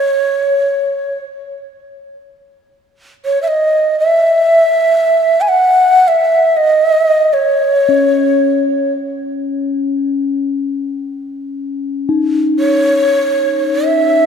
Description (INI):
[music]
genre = world meditative, free-time meditation music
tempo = free time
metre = none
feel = none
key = C# minor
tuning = A4 = 440 Hz
[part]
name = breathy mellow Native American-style cedar flute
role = melody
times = 0.0-14.3 s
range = C#5 to G#5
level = -11 LUFS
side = right 1 dB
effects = ping-pong delay
[part]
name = bronze singing bowl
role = texture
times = 7.9-14.3 s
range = C#4 to D#4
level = -16 LUFS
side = left 4 dB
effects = stereo widening
[sound]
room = wet church reverb, RT60 2.8 s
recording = none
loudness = -11 LUFS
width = side -7 dB against mid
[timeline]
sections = 0.0-11.3 A section; 11.3-14.3 A section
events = none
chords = none